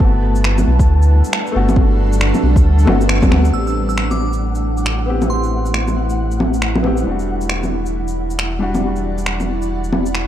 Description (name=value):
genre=future garage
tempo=136 BPM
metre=4/4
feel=swing 61% on 16ths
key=A dorian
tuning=A4 = 440 Hz
part: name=felt-muted upright piano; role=accompaniment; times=0.0-10.3 s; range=G3 to G4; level=-24 LUFS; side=left 4 dB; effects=sidechain pumping, analog delay
part: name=granular cloud pad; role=sustained chords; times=0.0-10.3 s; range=G3 to F#5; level=-24 LUFS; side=right 1 dB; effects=built-in reverb, sidechain pumping
part: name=warm sub bass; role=bass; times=0.0-10.3 s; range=E1 to D2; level=-17 LUFS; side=equal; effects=sidechain pumping
part: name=electronic kick drum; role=drums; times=0.0-3.3 s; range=none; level=-14 LUFS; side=equal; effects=overdrive
part: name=flickering grainy texture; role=texture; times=0.0-10.3 s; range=F#5 to A5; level=-31 LUFS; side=equal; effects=built-in reverb
part: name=electronic shaker, finger snaps and bongos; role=drums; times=0.4-10.3 s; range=none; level=-20 LUFS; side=equal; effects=overdrive
part: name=glassy synth bell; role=melody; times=3.5-5.9 s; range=C6 to E6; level=-28 LUFS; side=right 2 dB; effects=chorus, analog delay
room=light reverb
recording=dark, warm production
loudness=-14 LUFS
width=side -11 dB against mid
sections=0.0-3.5 A section; 3.5-10.3 B section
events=band accent 3.1; filter sweep on ambient pad 3.5-10.3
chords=0.0 Gmaj9; 3.5 Am7; 7.1 Em7